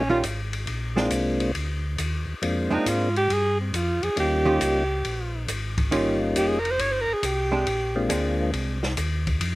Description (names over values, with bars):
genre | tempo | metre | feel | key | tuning
soul jazz organ trio | 137 BPM | 4/4 | swing 67% on 8ths | Bb mixolydian | A4 = 437 Hz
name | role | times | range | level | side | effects
clear alto saxophone | melody | 0.0-8.1 s | C4 to Db5 | -24 LUFS | right 1 dB | none
percussive tonewheel organ | melody | 0.0-8.5 s | G3 to F4 | -25 LUFS | left 1 dB | slow rotary speaker, overdrive
mellow tonewheel organ | bass | 0.0-9.6 s | F1 to Ab2 | -28 LUFS | equal | slow rotary speaker
archtop guitar, miked and amplified | accompaniment | 0.1-8.8 s | Eb3 to G4 | -26 LUFS | right 2 dB | none
open jazz drum kit | drums | 0.2-9.6 s | hi-hat, kick drum, ride cymbal, snare drum | -30 LUFS | left 2 dB | none
room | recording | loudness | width
little or no reverb | recorded outdoors, with no room sound | -22 LUFS | side -19 dB against mid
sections
0.0-9.6 A section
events
alto saxophone solo 0.0-9.6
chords
0.0 Eb9; 0.7 Bb9; 4.2 Eb9; 7.7 Bb9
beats
0.23 | 0.67 1.11 1.54 1.98 | 2.42 2.86 3.29 3.73 | 4.17 4.61 5.04 5.48 | 5.92 6.35 6.79 7.23 | 7.67 8.10 8.54 8.98 | 9.42